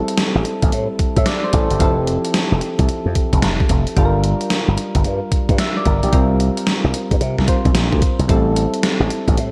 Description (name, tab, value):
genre	R&B, new jack swing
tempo	111 BPM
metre	4/4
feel	swing 64% on 16ths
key	unclear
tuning	A4 = 439 Hz
part	soft electric-piano-like synth keys	accompaniment	0.0-9.5 s	F3 to E5	-24 LUFS	equal	chorus
part	gated 80s digital drum machine	drums	0.1-9.5 s	hi-hat, kick drum, snare drum	-20 LUFS	equal	gated reverb, gated reverb snare
part	slap bass with an envelope filter	bass	0.4-9.5 s	F1 to C3	-20 LUFS	equal	none
room	light reverb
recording	bright 1980s-style digital production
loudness	-17 LUFS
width	mono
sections	0.0-9.5 A section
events	none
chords	0.0 Am7; 1.8 Fmaj7; 4.0 Gm7; 6.1 C7sus4; 8.3 Am7